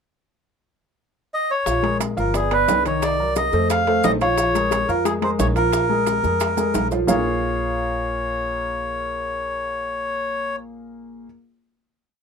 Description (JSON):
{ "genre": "Afro-Cuban jazz", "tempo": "177 BPM", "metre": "4/4", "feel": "straight", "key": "Bb minor", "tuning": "A4 = 440 Hz", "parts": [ { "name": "melodica", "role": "melody", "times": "1.3-10.6 s", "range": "Ab4 to F5", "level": "-22 LUFS", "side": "equal", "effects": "none" }, { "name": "warm concert grand piano", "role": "accompaniment", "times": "1.7-11.3 s", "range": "Eb3 to F5", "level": "-24 LUFS", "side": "left 1 dB", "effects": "none" }, { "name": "upright bass", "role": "bass", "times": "1.7-11.3 s", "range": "G1 to F2", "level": "-27 LUFS", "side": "equal", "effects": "none" }, { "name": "bongos", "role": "percussion", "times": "1.7-7.2 s", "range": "none", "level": "-30 LUFS", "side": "left 5 dB", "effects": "none" }, { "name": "maracas", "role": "percussion", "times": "1.7-7.2 s", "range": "none", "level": "-34 LUFS", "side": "right 8 dB", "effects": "none" }, { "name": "timbales", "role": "percussion", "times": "1.8-7.2 s", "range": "none", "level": "-27 LUFS", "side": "right 8 dB", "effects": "none" } ], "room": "light reverb", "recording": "minimal, uncompressed stereo recording", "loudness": "-19 LUFS", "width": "side -6 dB against mid", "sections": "0.3-1.7 pickup bar; 1.7-7.1 A section; 7.1-9.8 final chord", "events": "drum fill 6.6-7.1", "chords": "0.3 N.C.; 1.7 Bbm7; 2.3 G; 3.0 Cm7b5; 3.7 F; 4.4 Bbm7", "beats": "| 0.31 0.65 0.99 1.33 | 1.67 2.00 2.34 2.68 | 3.02 3.36 3.70 4.04 | 4.38 4.71 5.05 5.39 | 5.73 6.07 6.41 6.74 | 7.08 7.42 7.76 8.10 | 8.44 8.78 9.12 9.46" }